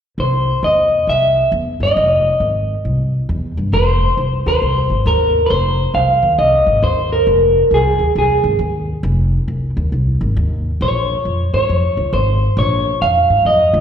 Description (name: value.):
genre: blues.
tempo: 136 BPM.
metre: 4/4.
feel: swing 64% on 8ths.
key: F minor from 3.7 s.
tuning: A4 = 439 Hz.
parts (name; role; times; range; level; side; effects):
electric guitar through a small old amp; melody; 0.2-13.8 s; Ab4 to F5; -14 LUFS; equal; plate reverb, slapback echo.
upright bass; bass; 0.2-13.8 s; F1 to Ab2; -17 LUFS; equal; none.
room: wet club reverb, RT60 0.5 s.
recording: live gig heard through the venue's PA, recital hall reverb, nothing above 10.8 kHz.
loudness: -13 LUFS.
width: side -8 dB against mid.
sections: 0.2-3.7 A section; 3.7-13.8 B section.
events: none.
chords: 0.2 C; 2.0 Fm7; 2.9 C; 3.7 F7(no3); 10.8 Bbm7.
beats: | 0.19 0.63 1.08 1.52 | 1.97 2.41 2.85 3.29 | 3.74 4.18 4.62 5.07 | 5.51 5.95 6.39 6.83 | 7.28 7.72 8.16 8.60 | 9.04 9.48 9.93 10.37 | 10.81 11.25 11.69 12.13 | 12.57 13.01 13.45.